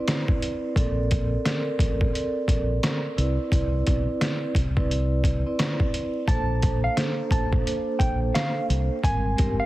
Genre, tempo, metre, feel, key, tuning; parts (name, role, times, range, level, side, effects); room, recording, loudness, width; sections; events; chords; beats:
hip hop, boom-bap hip-hop; 87 BPM; 4/4; swing 63% on 16ths; Bb major; A4 = 439 Hz
vibraphone with soft mallets; accompaniment; 0.0-9.7 s; G3 to D5; -28 LUFS; right 1 dB; high-pass filter, low-pass filter
trip hop sampler-style drum kit; drums; 0.1-9.6 s; hi-hat, kick drum, rim click, snare drum; -25 LUFS; equal; overdrive, vintage 12-bit sampler grit
deep dub fingered electric bass; bass; 0.8-9.6 s; G1 to C2; -25 LUFS; equal
mellow electric guitar; melody; 6.3-9.7 s; F5 to A5; -30 LUFS; right 1 dB; high-pass filter, low-pass filter, analog delay
digital ambience; heavily compressed radio sound, multiband compression, vinyl crackle; -22 LUFS; side -16 dB against mid
0.0-6.3 A section; 6.3-9.7 B section
0.0 Cmaj9; 0.8 Bbmaj9; 3.2 Cmaj9; 6.3 Bbmaj9; 9.0 Abmaj9
0.07 | 0.76 1.45 2.14 2.83 | 3.52 4.21 4.90 5.59 | 6.28 6.97 7.66 8.35 | 9.04